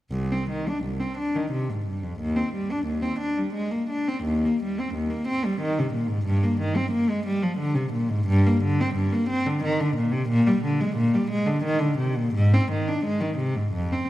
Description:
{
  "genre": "classical, baroque-style suite movement for unaccompanied cello",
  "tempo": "88 BPM",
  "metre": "3/4",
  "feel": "uneven beats, rubato",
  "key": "C minor",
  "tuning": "A4 = 440 Hz",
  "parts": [
    { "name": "warm cello", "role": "solo", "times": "0.1-14.1 s", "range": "C2 to D4", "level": "-22 LUFS", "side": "equal", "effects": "none" }
  ],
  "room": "wet concert hall reverb, RT60 1.8 s",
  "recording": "dark, warm production",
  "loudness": "-22 LUFS",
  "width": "side -15 dB against mid",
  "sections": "0.1-14.1 A section",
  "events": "none",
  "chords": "none"
}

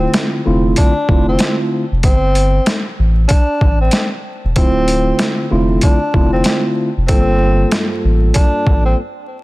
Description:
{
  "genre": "hip hop, boom-bap hip-hop",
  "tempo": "95 BPM",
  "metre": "4/4",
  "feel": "swing 61% on 16ths",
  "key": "D minor",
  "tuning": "A4 = 437 Hz",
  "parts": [
    { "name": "breathy tenor saxophone", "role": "melody", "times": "0.0-9.0 s", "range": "C4 to D4", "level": "-20 LUFS", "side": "equal", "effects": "high-pass filter, low-pass filter, digital delay" },
    { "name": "mellow tine electric piano", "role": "accompaniment", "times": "0.0-9.0 s", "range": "G2 to A4", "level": "-17 LUFS", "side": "equal", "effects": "slow stereo tremolo, high-pass filter, low-pass filter" },
    { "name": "soft dub sub bass", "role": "bass", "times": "0.0-8.9 s", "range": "D1 to A1", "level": "-15 LUFS", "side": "equal", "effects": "none" },
    { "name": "boom bap sampler-style drum kit", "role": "drums", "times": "0.1-8.8 s", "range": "hi-hat, kick drum, snare drum", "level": "-15 LUFS", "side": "equal", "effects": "overdrive" }
  ],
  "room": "digital ambience",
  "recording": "dense, heavily limited modern master, vinyl crackle",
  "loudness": "-12 LUFS",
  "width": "side -20 dB against mid",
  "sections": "0.0-9.4 A section",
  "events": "break 9.0-9.4",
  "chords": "0.0 Dm7; 2.0 C5; 4.6 Dm7; 7.1 Gm7"
}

